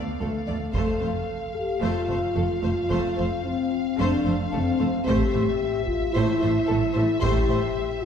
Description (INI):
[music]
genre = cinematic, epic orchestral film score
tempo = 111 BPM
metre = 4/4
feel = straight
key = unclear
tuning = A4 = 440 Hz
[part]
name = rich studio violin section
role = melody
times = 0.0-8.1 s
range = E5 to F5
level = -34 LUFS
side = left 3 dB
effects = none
[part]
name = warm symphonic viola section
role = accompaniment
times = 0.0-7.6 s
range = A3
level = -31 LUFS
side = right 1 dB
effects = none
[part]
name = dark French horn section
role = sustained chords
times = 0.0-8.1 s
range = A3 to A4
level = -25 LUFS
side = left 2 dB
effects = none
[part]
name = rich symphonic violin section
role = second line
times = 0.2-7.6 s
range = A4 to D5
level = -34 LUFS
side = left 2 dB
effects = none
[part]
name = rich symphonic double bass section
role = bass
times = 0.2-7.6 s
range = F1 to D2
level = -30 LUFS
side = right 2 dB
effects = none
[part]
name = warm symphonic cello section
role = bass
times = 0.2-7.6 s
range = D2 to A2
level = -31 LUFS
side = right 2 dB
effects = none
[part]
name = taiko ensemble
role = drums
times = 0.7-1.8, 5.1-7.7 s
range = none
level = -31 LUFS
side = equal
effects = none
[sound]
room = wet concert hall reverb, RT60 2.2 s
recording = heard from further back in the room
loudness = -22 LUFS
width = side -8 dB against mid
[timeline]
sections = 0.0-8.1 A section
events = none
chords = 0.0 Dm; 0.7 F; 5.1 Am7